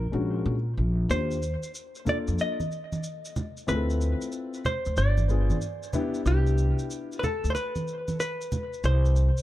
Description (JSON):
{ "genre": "hip hop, jazz-hop", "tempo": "93 BPM", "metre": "4/4", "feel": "swing 66% on 16ths", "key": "C major", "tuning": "A4 = 440 Hz", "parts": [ { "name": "vintage hollow-body jazz guitar", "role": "melody", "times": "0.0-9.4 s", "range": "G4 to Eb5", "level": "-32 LUFS", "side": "equal", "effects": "analog delay" }, { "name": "upright bass", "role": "bass", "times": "0.0-9.3 s", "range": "G1 to Bb2", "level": "-24 LUFS", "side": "equal", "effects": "none" }, { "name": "dark grand piano", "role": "accompaniment", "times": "0.1-7.2 s", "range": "Ab3 to A4", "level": "-32 LUFS", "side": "left 4 dB", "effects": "none" }, { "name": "maracas and congas", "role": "percussion", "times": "1.1-9.4 s", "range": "none", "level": "-34 LUFS", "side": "right 2 dB", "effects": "none" } ], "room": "small room ambience", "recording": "dark, warm production", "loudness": "-25 LUFS", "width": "side -14 dB against mid", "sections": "0.0-9.4 A section", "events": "none", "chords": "0.0 Bb7alt; 1.1 Ebmaj9; 3.7 Dm7; 5.0 G7b9; 6.3 Cmaj7", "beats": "0.45 | 1.10 1.74 2.39 3.03 | 3.68 4.32 4.97 5.61 | 6.26 6.91 7.55 8.20 | 8.84" }